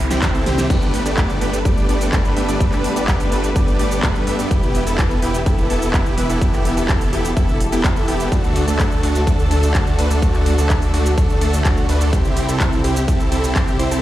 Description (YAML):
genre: EDM, festival progressive house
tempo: 126 BPM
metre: 4/4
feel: straight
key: G major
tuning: A4 = 439 Hz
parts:
  - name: clear symphonic string section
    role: sustained chords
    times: 0.0-14.0 s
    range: C3 to B4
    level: -26 LUFS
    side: left 2 dB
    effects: sidechain pumping
  - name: wide detuned saw bass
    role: bass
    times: 0.0-14.0 s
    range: E1 to G2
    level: -21 LUFS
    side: equal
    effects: chorus, sidechain pumping
  - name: noise sweep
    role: sound effects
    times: 0.0-0.7 s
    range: none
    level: -35 LUFS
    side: right 4 dB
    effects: none
  - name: big supersaw lead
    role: riff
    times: 0.1-14.0 s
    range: A3 to E5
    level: -21 LUFS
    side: right 1 dB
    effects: sidechain pumping, tape echo
  - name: big-room dance drum kit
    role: drums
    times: 0.1-14.0 s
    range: crash cymbal, handclaps, hi-hat, ride cymbal, shaker, snare drum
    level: -26 LUFS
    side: equal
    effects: none
  - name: electronic kick drum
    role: drums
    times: 0.2-13.7 s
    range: none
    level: -18 LUFS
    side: equal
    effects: none
room: little or no reverb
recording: played on a big sound system in a bare room, large studio reverb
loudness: -15 LUFS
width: side -14 dB against mid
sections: 0.0-14.0 A section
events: drum fill 0.0-0.7; noise sweep 0.0-0.7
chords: 0.0 C; 0.7 Gadd9; 4.5 Em; 8.3 D; 12.1 C